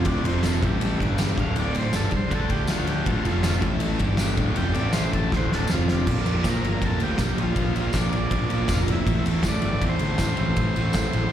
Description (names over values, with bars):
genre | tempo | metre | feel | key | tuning
garage rock duo or trio | 160 BPM | 4/4 | straight | unclear | A4 = 440 Hz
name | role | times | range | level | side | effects
combo organ | melody | 0.0-11.3 s | G3 to G5 | -31 LUFS | equal | none
overdriven combo organ | sustained chords | 0.0-11.3 s | C4 to F5 | -38 LUFS | left 1 dB | none
fuzz guitar | riff | 0.0-11.3 s | D2 to D4 | -28 LUFS | right 1 dB | distortion, slapback echo
fuzz picked electric bass | bass | 0.0-11.3 s | D1 to Bb2 | -25 LUFS | equal | overdrive
oversized low-tuned drum kit | drums | 0.0-11.2 s | crash cymbal, kick drum, ride cymbal, snare drum | -26 LUFS | equal | none
tambourine | percussion | 0.5-11.0 s | none | -39 LUFS | left 2 dB | none
room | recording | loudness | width
studio reverb | live gig heard through the venue's PA, recital hall reverb | -21 LUFS | side -10 dB against mid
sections
0.0-6.1 A section; 6.1-11.3 B section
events
transistor combo organ solo 0.0-6.1; drum fill 5.3-6.1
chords
0.1 D5; 0.2 F5; 0.6 A5; 1.0 G5; 1.4 Dm; 3.2 F5; 3.6 A5; 4.0 G5; 4.4 Dm; 4.7 A5; 5.3 Dm; 5.7 F5; 6.1 Bb; 9.1 Am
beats
| 0.06 0.43 0.81 1.19 | 1.56 1.94 2.31 2.69 | 3.06 3.44 3.81 4.18 | 4.56 4.93 5.31 5.68 | 6.06 6.43 6.81 7.18 | 7.56 7.94 8.31 8.69 | 9.06 9.44 9.81 10.19 | 10.57 10.94 11.32